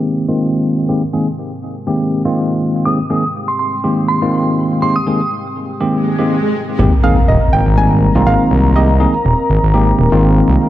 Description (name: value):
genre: deep house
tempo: 122 BPM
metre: 4/4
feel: swing 55% on 16ths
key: Ab major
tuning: A4 = 444 Hz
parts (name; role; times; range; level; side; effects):
- dark analog pad; sustained chords; 0.0-10.7 s; Ab3 to Bb5; -22 LUFS; left 1 dB; chorus
- tine electric piano; stabs; 0.0-10.7 s; Eb3 to Ab4; -15 LUFS; equal; medium stereo tremolo, low-pass filter, digital delay
- glassy synth bell; melody; 2.9-5.3 s; C6 to Eb6; -20 LUFS; right 2 dB; chorus, tremolo, dub echo
- swell and impact; sound effects; 6.0-8.8 s; none; -17 LUFS; equal; none
- smooth gliding synth bass; bass; 6.8-10.6 s; Eb1 to C2; -13 LUFS; equal; none
- soft round pluck; melody; 7.0-9.7 s; Eb5 to Ab5; -19 LUFS; right 2 dB; chorus, cassette tape, tape echo
room: light reverb, digital ambience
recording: low-pass filter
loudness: -12 LUFS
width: side -14 dB against mid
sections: 0.0-6.8 A section; 6.8-10.7 B section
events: filter sweep on tine electric piano 0.0-6.8; filter sweep on analog synth pad 0.0-6.8; filter sweep 0.0-6.8; swell 6.0-6.8; drop 6.8-10.7; impact 6.8-8.8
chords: 0.0 Abmaj9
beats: 0.40 | 0.89 1.38 1.87 2.36 | 2.85 3.35 3.84 4.33 | 4.82 5.31 5.81 6.30 | 6.79 7.28 7.77 8.27 | 8.76 9.25 9.74 10.23